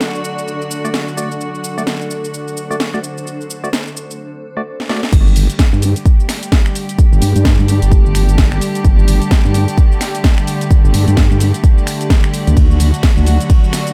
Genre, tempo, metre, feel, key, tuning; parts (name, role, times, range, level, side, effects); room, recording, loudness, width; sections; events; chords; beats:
bass house; 129 BPM; 4/4; swing 60% on 16ths; A4 = 440 Hz
dark studio string section; sustained chords; 0.0-13.9 s; D3 to G4; -25 LUFS; equal; sidechain pumping
house drum kit; drums; 0.0-13.9 s; crash cymbal, finger snaps, hi-hat, ride cymbal, shaker, snare drum; -23 LUFS; equal; small room ambience
granular cloud pad; texture; 0.0-13.9 s; D4 to A5; -29 LUFS; equal; built-in reverb, sidechain pumping
percussive organ stab; stabs; 0.8-5.0 s; A3 to D5; -27 LUFS; equal; chorus, sidechain pumping, digital delay
vowel-sweep wobble bass; bass; 5.1-13.4 s; G1 to G2; -14 LUFS; equal; chorus, overdrive, sidechain pumping
electronic kick drum; drums; 5.1-13.6 s; -13 LUFS; equal; small room ambience
little or no reverb; -13 LUFS; mono
0.0-5.1 A section; 5.1-13.9 B section
filter sweep on string section 0.0-5.1; drum fill 4.8-5.1; drop 5.1-13.9
0.0 D; 5.1 Gsus2; 12.6 D
0.01 0.47 0.94 | 1.41 1.87 2.33 2.80 | 3.27 3.73 4.20 4.66 | 5.13 5.59 6.06 6.52 | 6.99 7.45 7.92 8.38 | 8.85 9.31 9.78 10.24 | 10.71 11.17 11.64 12.10 | 12.57 13.03 13.50